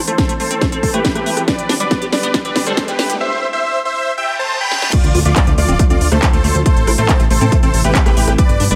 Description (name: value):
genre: uplifting trance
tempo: 139 BPM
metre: 4/4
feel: straight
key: A minor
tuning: A4 = 443 Hz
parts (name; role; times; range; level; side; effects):
- riser, reverse cymbal and impact; sound effects; 0.8-6.7 s; none; -29 LUFS; equal; none
- dense compressed supersaw; melody; 0.1-8.8 s; F4 to B5; -21 LUFS; equal; sidechain pumping, low-pass filter
- liquid acid bass; arpeggios; 0.1-8.8 s; G3 to G4; -26 LUFS; equal; phaser, subtle chorus, sidechain pumping, dub echo
- techno drum kit; drums; 0.1-8.8 s; crash cymbal, handclaps, hi-hat, rim click, snare drum; -22 LUFS; equal; overdrive
- electronic kick drum; drums; 0.2-8.5 s; none; -17 LUFS; equal; overdrive
- plucky analog bass; bass; 5.0-8.8 s; D1 to A2; -18 LUFS; equal; sidechain pumping
room: light reverb, digital ambience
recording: high-pass filter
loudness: -15 LUFS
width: mono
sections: 0.0-4.9 A section; 4.9-8.8 B section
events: build-up 0.0-4.9; drum fill 0.0-3.2, 4.7; filter sweep on supersaw synth 0.0-4.9; filter sweep 0.0-4.9; reverse cymbal 4.2-4.9; drop 4.9-8.8; impact 4.9-6.7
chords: 0.0 Am; 1.5 G; 3.2 C; 4.9 Dm; 6.7 Am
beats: 0.18 0.61 1.05 | 1.48 1.91 2.34 2.77 | 3.20 3.64 4.07 4.50 | 4.93 5.36 5.79 6.23 | 6.66 7.09 7.52 7.95 | 8.38